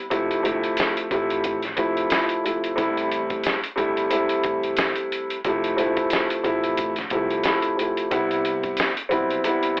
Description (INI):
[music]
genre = hip hop, boom-bap hip-hop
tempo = 90 BPM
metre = 4/4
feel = swing 57% on 16ths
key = unclear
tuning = A4 = 440 Hz
[part]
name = dark baby grand piano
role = accompaniment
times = 0.0-9.8 s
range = C3 to E4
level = -22 LUFS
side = equal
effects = cassette tape, high-pass filter, low-pass filter
[part]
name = upright bass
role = bass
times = 0.1-9.8 s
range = F1 to F2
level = -35 LUFS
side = equal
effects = none
[part]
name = boom bap sampler-style drum kit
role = drums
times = 0.1-9.8 s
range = hi-hat, kick drum, snare drum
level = -25 LUFS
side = equal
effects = none
[part]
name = tambourine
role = percussion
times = 0.8-9.0 s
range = none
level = -41 LUFS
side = equal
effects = none
[sound]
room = little or no reverb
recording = dry, gritty hardware recording, vinyl crackle, telephone sound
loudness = -20 LUFS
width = side -31 dB against mid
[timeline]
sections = 0.0-9.8 A section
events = none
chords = 0.1 Fmaj7; 2.8 Am7; 5.4 Fmaj7; 8.1 Cmaj7